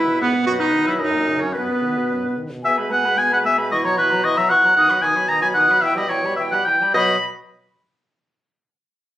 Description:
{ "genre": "quick classical-period movement for wind quintet", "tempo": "112 BPM", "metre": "2/4", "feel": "straight", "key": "B major", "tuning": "A4 = 440 Hz", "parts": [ { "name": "silver concert flute", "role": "melody", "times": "0.0-7.3 s", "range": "A#4 to D#6", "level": "-25 LUFS", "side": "left 3 dB", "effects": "none" }, { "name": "clear oboe", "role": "second line", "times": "0.0-7.2 s", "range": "B4 to A#5", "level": "-18 LUFS", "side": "equal", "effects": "none" }, { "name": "bright clarinet", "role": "accompaniment", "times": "0.0-7.2 s", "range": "B3 to B4", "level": "-24 LUFS", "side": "right 2 dB", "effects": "none" }, { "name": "warm French horn", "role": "accompaniment", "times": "0.0-7.2 s", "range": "F#2 to B3", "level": "-29 LUFS", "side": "right 1 dB", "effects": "none" }, { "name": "mellow bassoon", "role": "bass", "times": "0.0-7.2 s", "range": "F#2 to B2", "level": "-28 LUFS", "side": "equal", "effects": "none" } ], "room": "moderate studio reverb, RT60 0.8 s", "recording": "recorded on a phone in the room, club reverb, compression", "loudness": "-16 LUFS", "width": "side -13 dB against mid", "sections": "0.0-2.6 A section; 2.6-6.9 B section; 6.9-8.0 C section", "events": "none", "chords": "0.5 B/F#; 1.0 F#; 1.5 B/F#; 2.6 Eadd9/B; 3.7 F#7/B; 4.8 B; 5.8 Em/B; 6.9 B5", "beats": "| 0.47 1.00 | 1.55 2.10 | 2.65 3.18 | 3.71 4.24 | 4.76 5.28 | 5.82 6.37 | 6.94" }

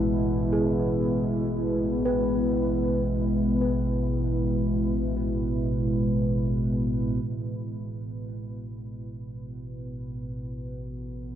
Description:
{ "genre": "dark ambient drone", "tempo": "free time", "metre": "none", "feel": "none", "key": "unclear", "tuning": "A4 = 443 Hz", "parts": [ { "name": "deep dark ambient pad", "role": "sustained chords", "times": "0.0-11.4 s", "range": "G#3 to B4", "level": "-28 LUFS", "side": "equal", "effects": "chorus, built-in reverb" }, { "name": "gamelan-type bossed gongs", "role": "arpeggios", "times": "0.0-8.3 s", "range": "B2 to B4", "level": "-34 LUFS", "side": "right 2 dB", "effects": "ping-pong delay" }, { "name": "analog drone", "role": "drone", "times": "0.0-11.4 s", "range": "A1 to B2", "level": "-28 LUFS", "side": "equal", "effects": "chorus" }, { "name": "quartz singing bowl", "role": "texture", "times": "0.0-7.3 s", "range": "E3 to E4", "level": "-41 LUFS", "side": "equal", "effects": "none" } ], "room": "wet huge ambient reverb, RT60 8.0 s", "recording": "worn, warbling old tape, cassette tape, warbly pitch drift", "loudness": "-24 LUFS", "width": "side -10 dB against mid", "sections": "0.0-7.2 A section; 7.2-11.4 B section", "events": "fade-in on synth drone 7.2-11.4", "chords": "0.0 Asus2", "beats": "free time" }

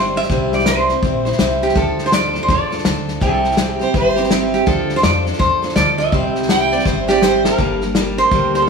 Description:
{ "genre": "honky-tonk and classic country", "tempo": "165 BPM", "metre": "4/4", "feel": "swing 62% on 8ths", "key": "unclear", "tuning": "A4 = 440 Hz", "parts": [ { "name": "lap resonator guitar", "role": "melody", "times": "0.0-8.7 s", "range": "G4 to E5", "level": "-18 LUFS", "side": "right 2 dB", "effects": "none" }, { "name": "picked steel-string acoustic guitar", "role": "accompaniment", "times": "0.0-8.7 s", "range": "G2 to C5", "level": "-20 LUFS", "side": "left 1 dB", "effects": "none" }, { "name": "upright bass", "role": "bass", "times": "0.0-8.7 s", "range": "G1 to F2", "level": "-24 LUFS", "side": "equal", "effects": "none" }, { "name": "natural country drum kit", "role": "drums", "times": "0.2-8.6 s", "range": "hi-hat, kick drum, snare drum", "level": "-20 LUFS", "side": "left 2 dB", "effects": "none" }, { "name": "clear fiddle", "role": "second line", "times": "3.8-4.3, 6.5-7.5 s", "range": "C5 to G5", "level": "-20 LUFS", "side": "right 2 dB", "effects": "none" } ], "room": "moderate recital hall reverb, RT60 1.4 s", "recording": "small room ambience", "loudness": "-14 LUFS", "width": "side -5 dB against mid", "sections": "0.0-7.6 A section; 7.6-8.7 B section", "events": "drum fill 6.9-7.6", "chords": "0.0 C; 1.8 Dm; 3.2 C; 4.7 Dm; 6.1 C; 7.6 Gm", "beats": "| 0.30 0.66 1.03 1.39 | 1.76 2.12 2.48 2.85 | 3.21 3.58 3.94 4.31 | 4.67 5.04 5.40 5.76 | 6.13 6.49 6.86 7.22 | 7.58 7.95 8.31 8.68" }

